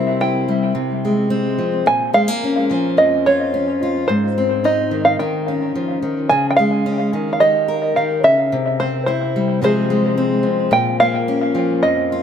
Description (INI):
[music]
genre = folk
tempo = 108 BPM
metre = 4/4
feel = straight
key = unclear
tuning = A4 = 440 Hz
[part]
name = open-back banjo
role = melody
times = 0.0-12.2 s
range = C5 to Ab5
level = -18 LUFS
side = right 2 dB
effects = analog delay
[part]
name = fingerpicked steel-string acoustic guitar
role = accompaniment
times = 0.0-12.2 s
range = F2 to C5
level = -18 LUFS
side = left 2 dB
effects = analog delay
[sound]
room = moderate echo chamber reverb, RT60 2.0 s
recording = echo-heavy mix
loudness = -15 LUFS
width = side -8 dB against mid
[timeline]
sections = 0.0-6.3 A section; 6.3-12.2 A section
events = none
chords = 0.0 C; 0.7 Fm/C; 1.9 Bbm; 4.1 Ab; 5.2 Eb7; 6.3 Db; 7.1 Eb; 8.5 C; 9.6 Fm/C; 10.7 Bbm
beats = 0.19 0.75 1.30 | 1.86 2.42 2.97 3.52 | 4.08 4.64 5.19 5.75 | 6.30 6.86 7.41 7.96 | 8.52 9.07 9.62 10.18 | 10.73 11.28 11.83